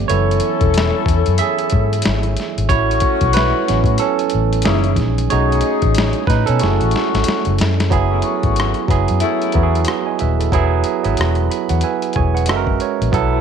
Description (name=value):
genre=R&B, neo-soul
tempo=92 BPM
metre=4/4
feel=swing 58% on 16ths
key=F# dorian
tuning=A4 = 440 Hz
part: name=barky tine electric piano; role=accompaniment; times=0.0-13.4 s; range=E3 to B5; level=-18 LUFS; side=right 12 dB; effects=none
part: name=vintage muted fingered electric bass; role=bass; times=0.0-13.4 s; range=D#1 to B2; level=-18 LUFS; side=left 2 dB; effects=none
part: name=clear saxophone section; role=stabs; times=0.1-13.4 s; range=A3 to A4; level=-22 LUFS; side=left 14 dB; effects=none
part: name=boom bap sampler-style drum kit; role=drums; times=0.1-13.3 s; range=hi-hat, kick drum, rim click, snare drum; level=-21 LUFS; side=left 2 dB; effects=none
room=light reverb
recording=1960s-style stereo with parts hard left and right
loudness=-14 LUFS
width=side -7 dB against mid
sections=0.0-7.9 A section; 7.9-13.4 B section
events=tine electric piano solo 0.0-7.9; drum fill 6.6-7.9; tine electric piano fill 11.2-13.1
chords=0.1 F#m11; 2.7 A6; 4.6 F#13; 5.3 B9; 6.6 F#m9; 10.5 Eadd9; 12.5 F#9